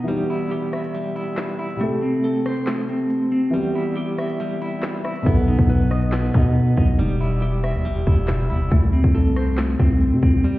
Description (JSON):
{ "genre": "hip hop, drill", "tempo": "139 BPM", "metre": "4/4", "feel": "half-time", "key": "E harmonic minor", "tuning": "A4 = 438 Hz", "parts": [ { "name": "dark grand piano", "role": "accompaniment", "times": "0.0-7.0 s", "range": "B2 to A4", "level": "-25 LUFS", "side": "left 2 dB", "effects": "low-pass filter" }, { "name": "electric guitar at the edge of break-up", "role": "arpeggios", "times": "0.0-10.6 s", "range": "G3 to E5", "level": "-23 LUFS", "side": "right 1 dB", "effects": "tremolo, low-pass filter, digital delay" }, { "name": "drill drum kit", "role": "drums", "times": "0.1-10.3 s", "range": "handclaps, hi-hat, kick drum, rim click, snare drum", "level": "-20 LUFS", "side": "equal", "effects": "none" }, { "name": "growling 808-style bass", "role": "bass", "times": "5.3-10.4 s", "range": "E1 to C3", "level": "-20 LUFS", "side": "equal", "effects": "none" } ], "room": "digital ambience", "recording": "heard muffled through a wall, stone room reverb, EQ", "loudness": "-18 LUFS", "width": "side -17 dB against mid", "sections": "0.0-10.6 A section", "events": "break 0.0-5.3", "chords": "0.1 Emadd9; 1.8 C6; 3.5 Emadd9; 5.3 B7; 7.0 Em; 8.7 C5" }